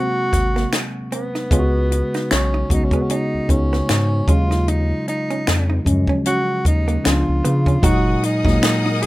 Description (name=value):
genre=R&B, neo-soul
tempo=76 BPM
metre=4/4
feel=swing 57% on 16ths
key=F# major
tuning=A4 = 440 Hz
part: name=breathy tenor saxophone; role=melody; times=0.0-9.1 s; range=B3 to G#4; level=-23 LUFS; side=equal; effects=none
part: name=vintage hollow-body jazz guitar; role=second line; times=0.0-9.1 s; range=A#3 to F#4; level=-28 LUFS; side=right 3 dB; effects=none
part: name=mellow tine electric piano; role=accompaniment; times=0.0-9.1 s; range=A#2 to F#4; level=-21 LUFS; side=equal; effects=none
part: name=round analog bass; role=bass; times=0.3-9.1 s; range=F#1 to C#3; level=-19 LUFS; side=equal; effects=none
part: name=compact cocktail drum kit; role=drums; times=0.3-9.1 s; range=finger snaps, hi-hat, kick drum, snare drum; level=-20 LUFS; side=equal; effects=none
part: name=clear studio string section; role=sustained chords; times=7.8-9.1 s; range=A#4 to D#6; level=-28 LUFS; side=left 4 dB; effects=none
room=light reverb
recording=rough home demo mix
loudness=-16 LUFS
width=side -17 dB against mid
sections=0.0-7.8 A section; 7.8-9.1 B section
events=none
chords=0.0 G#9; 1.5 C#7sus4; 4.3 D#m11; 7.0 C#7b9; 7.8 F#69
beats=0.72 | 1.51 2.30 3.09 3.88 | 4.67 5.46 6.25 7.04 | 7.83 8.62